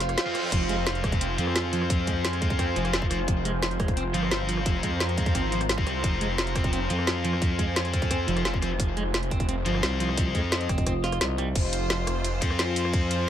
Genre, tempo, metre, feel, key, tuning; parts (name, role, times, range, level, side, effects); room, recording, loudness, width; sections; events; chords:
dark technical drum and bass; 174 BPM; 4/4; straight; F minor; A4 = 440 Hz
deep dark ambient pad; sustained chords; 0.0-13.3 s; F4 to Bb5; -32 LUFS; equal; chorus, built-in reverb, sidechain pumping
growling FM bass; bass; 0.0-2.7, 6.9-13.3 s; F1 to F2; -29 LUFS; equal; tube saturation
drum and bass drum kit; drums; 0.0-13.2 s; crash cymbal, hi-hat, ride cymbal, rim click, snare drum; -30 LUFS; equal
reverse cymbal; sound effects; 0.0-0.5 s; -35 LUFS; right 4 dB
scooped high-gain guitar; stabs; 0.3-13.3 s; F3 to F4; -32 LUFS; left 5 dB; distortion, ping-pong delay
electric guitar at the edge of break-up; arpeggios; 0.5-11.5 s; F3 to F4; -33 LUFS; right 2 dB; sidechain pumping, ping-pong delay
wide detuned saw bass; bass; 0.5-12.4 s; F1 to F2; -29 LUFS; equal; chorus, overdrive, sidechain pumping
electronic kick drum; drums; 0.5-13.0 s; -27 LUFS; equal
clear studio string section; texture; 11.6-13.3 s; F4 to C5; -32 LUFS; equal; sidechain pumping
little or no reverb; -23 LUFS; side -10 dB against mid
0.0-11.6 A section; 11.6-13.3 A section
drop 0.0-11.6, 11.6-13.3; reverse cymbal 0.0-0.5; kick drops out 11.2-11.6
0.0 Fm